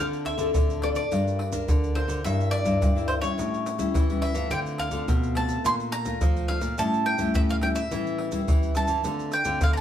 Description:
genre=samba and choro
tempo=106 BPM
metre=4/4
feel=straight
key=D minor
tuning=A4 = 440 Hz
part: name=bowl-back mandolin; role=melody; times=0.0-9.8 s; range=C5 to C6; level=-29 LUFS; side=right 1 dB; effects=none
part: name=nylon-string guitar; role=accompaniment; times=0.0-9.8 s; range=A2 to Bb4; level=-30 LUFS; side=left 4 dB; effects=none
part: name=nylon-string guitar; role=bass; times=0.0-9.8 s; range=G2 to F3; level=-29 LUFS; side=equal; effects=none
part: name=maracas, pandeiro and surdo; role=percussion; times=0.1-9.8 s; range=none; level=-26 LUFS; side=equal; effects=none
room=moderate studio reverb, RT60 0.8 s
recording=band playing live in one room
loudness=-23 LUFS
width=side -10 dB against mid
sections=0.0-9.8 A section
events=none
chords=0.0 Dm7; 1.1 Gm7; 2.2 Em7b5/G; 3.4 A7; 4.5 Dm7; 5.7 Bbmaj7; 6.8 A7; 9.1 Dm7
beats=0.55 1.11 1.68 | 2.25 2.82 3.38 3.95 | 4.52 5.08 5.65 6.22 | 6.79 7.36 7.92 8.49 | 9.06 9.62

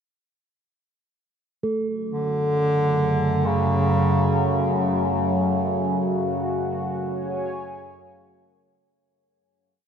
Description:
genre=dark ambient drone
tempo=free time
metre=none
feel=none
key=F# minor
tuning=A4 = 440 Hz
part: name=overtone-sweeping drone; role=drone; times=2.2-9.0 s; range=F#2 to C#3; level=-23 LUFS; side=equal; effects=chorus, built-in reverb, phaser
part: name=bronze singing bowl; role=texture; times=1.6-8.9 s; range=A3 to A4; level=-30 LUFS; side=right 3 dB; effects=stereo widening
part: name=clear bass clarinet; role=melody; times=2.1-4.8 s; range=C#3 to D3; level=-24 LUFS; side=equal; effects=tape echo
part: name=dark analog pad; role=sustained chords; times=5.3-8.9 s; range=F#4 to G#5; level=-30 LUFS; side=equal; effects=chorus
room=wet huge ambient reverb, RT60 7.6 s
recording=none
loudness=-20 LUFS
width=side -7 dB against mid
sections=1.6-8.9 A section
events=fade-out 5.3-8.9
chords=1.6 F#5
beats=free time

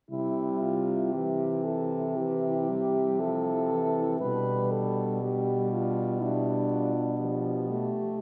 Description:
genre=classical, lyrical piece for horn quartet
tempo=59 BPM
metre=4/4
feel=rubato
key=C major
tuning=A4 = 439 Hz
part: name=warm French horn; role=melody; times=0.1-7.7 s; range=D4 to B4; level=-33 LUFS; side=equal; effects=none
part: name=mellow French horn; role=second line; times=0.1-8.2 s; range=D4 to G4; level=-38 LUFS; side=equal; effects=none
part: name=warm French horn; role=accompaniment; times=0.1-8.2 s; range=E3 to A3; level=-35 LUFS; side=equal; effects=none
part: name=clear French horn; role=bass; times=0.1-7.9 s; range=B2 to C3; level=-34 LUFS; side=equal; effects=none
room=wet concert hall reverb, RT60 2.5 s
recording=heard from further back in the room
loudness=-28 LUFS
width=mono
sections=0.1-8.2 A section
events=none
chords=0.1 C; 4.2 G7/B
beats=| 0.10 1.14 2.17 3.19 | 4.21 5.22 6.22 7.20 | 8.20

